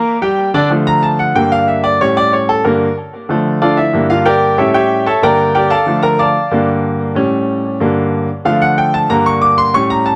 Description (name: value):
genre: latin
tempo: 186 BPM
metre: 4/4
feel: straight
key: unclear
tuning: A4 = 438 Hz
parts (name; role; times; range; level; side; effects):
- bright concert grand piano; solo; 0.0-10.2 s; G2 to D6; -14 LUFS; equal; none
room: moderate studio reverb, RT60 0.6 s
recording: none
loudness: -13 LUFS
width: mono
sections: 0.7-10.2 A section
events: grand piano solo 0.7-10.2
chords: 0.1 Gm; 0.7 Dm; 1.4 Gm; 2.0 A7; 2.6 Gm; 3.3 Dm; 3.9 Gm; 4.6 A7; 5.2 Gm; 5.9 Dm; 6.5 Gm; 7.2 A7; 7.8 Gm; 8.5 Dm; 9.1 Gm